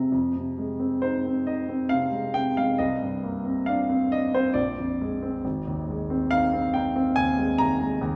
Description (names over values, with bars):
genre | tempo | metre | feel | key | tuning
classical, impressionist solo piano | 68 BPM | 3/4 | uneven beats, rubato | F minor | A4 = 439 Hz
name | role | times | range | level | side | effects
warm baby grand piano | solo | 0.0-8.2 s | Ab1 to Bb5 | -25 LUFS | equal | none
room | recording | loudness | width
wet recital hall reverb, RT60 1.7 s | heard from further back in the room | -25 LUFS | mono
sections
0.1-8.2 A section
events
none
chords
0.1 Fm7; 2.8 Cm9; 4.6 Bb9; 5.4 Ab